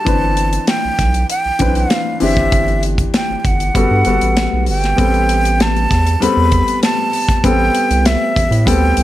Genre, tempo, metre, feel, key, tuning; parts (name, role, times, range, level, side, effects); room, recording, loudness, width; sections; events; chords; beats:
lush 1970s-style soul; 98 BPM; 4/4; straight; A4 = 442 Hz
breathy jazz flute; melody; 0.0-9.0 s; E5 to B5; -17 LUFS; right 1 dB
clear baby grand piano; accompaniment; 0.0-9.0 s; E3 to B4; -19 LUFS; left 3 dB
round analog bass; bass; 0.1-9.0 s; G1 to A2; -16 LUFS; right 1 dB
modern studio drum kit; drums; 0.1-9.0 s; hi-hat, kick drum, snare drum; -18 LUFS; equal
small room ambience; -12 LUFS; side -14 dB against mid
0.0-5.0 A section; 5.0-9.0 B section
0.1 Cmaj9/G; 2.2 D9sus4/G; 3.8 Gmaj9; 5.0 Am9
| 0.07 0.68 1.30 1.91 | 2.53 3.14 3.75 4.37 | 4.98 5.60 6.21 6.83 | 7.44 8.05 8.67